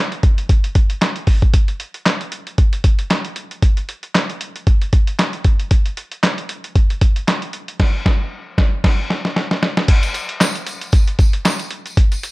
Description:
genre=funk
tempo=115 BPM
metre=4/4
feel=swing 56% on 16ths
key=none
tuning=none
part: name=lo-fi sampler-style drum kit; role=drums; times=0.1-12.3 s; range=crash cymbal, handclaps, hi-hat, kick drum, snare drum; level=-15 LUFS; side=equal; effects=none
part: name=tambourine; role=percussion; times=10.0-12.3 s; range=none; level=-30 LUFS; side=left 2 dB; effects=none
room=little or no reverb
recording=dark, warm production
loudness=-15 LUFS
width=side -22 dB against mid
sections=0.0-9.9 A section; 9.9-12.3 B section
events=band accent 7.8-9.9; drum fill 8.8-9.9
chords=none

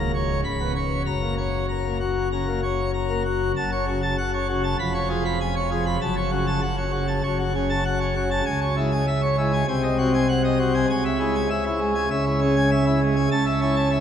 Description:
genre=classical, organ toccata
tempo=98 BPM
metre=4/4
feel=straight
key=F# major, F# minor from 3.6 s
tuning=A4 = 438 Hz
part: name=pipe organ, plenum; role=solo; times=0.0-14.0 s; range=C#1 to B5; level=-20 LUFS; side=equal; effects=none
room=wet cathedral reverb, RT60 4.5 s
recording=none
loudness=-20 LUFS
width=side -9 dB against mid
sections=0.0-3.6 A section; 3.6-14.0 B section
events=none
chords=0.4 Bsus2/C#; 1.1 F#; 3.6 F#m; 4.8 C#7/E#; 6.0 F#m; 8.5 C#m; 9.7 G#7/B#; 10.9 C#m; 13.3 A/C#

